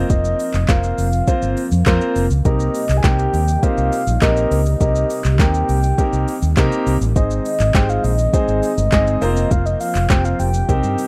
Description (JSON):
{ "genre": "dance-pop", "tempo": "102 BPM", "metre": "4/4", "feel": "straight", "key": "C minor", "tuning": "A4 = 440 Hz", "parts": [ { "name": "soft octave-layered synth lead", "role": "melody", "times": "0.0-11.1 s", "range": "Eb5 to Ab5", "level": "-25 LUFS", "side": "equal", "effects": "chorus" }, { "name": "clear baby grand piano", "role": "accompaniment", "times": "0.0-11.1 s", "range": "Ab3 to Eb5", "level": "-24 LUFS", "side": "equal", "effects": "sidechain pumping" }, { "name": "string machine, violas", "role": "sustained chords", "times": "0.0-11.1 s", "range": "C3 to Eb4", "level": "-33 LUFS", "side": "equal", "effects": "none" }, { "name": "vintage muted fingered electric bass", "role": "bass", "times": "0.0-10.9 s", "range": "F1 to C3", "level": "-21 LUFS", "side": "equal", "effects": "sidechain pumping" }, { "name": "smooth R&B drum kit", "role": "drums", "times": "0.1-11.1 s", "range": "handclaps, hi-hat, kick drum, shaker, snare drum", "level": "-21 LUFS", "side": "equal", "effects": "overdrive" } ], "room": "light reverb", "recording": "rough home demo mix", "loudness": "-17 LUFS", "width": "mono", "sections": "0.0-11.1 A section", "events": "none", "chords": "0.0 Fsus4; 2.5 Cm7; 7.2 Ab; 9.2 Fsus4", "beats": "| 0.10 0.69 1.28 1.86 | 2.45 3.04 3.63 4.22 | 4.81 5.39 5.98 6.57 | 7.16 7.75 8.34 8.92 | 9.51 10.10 10.69" }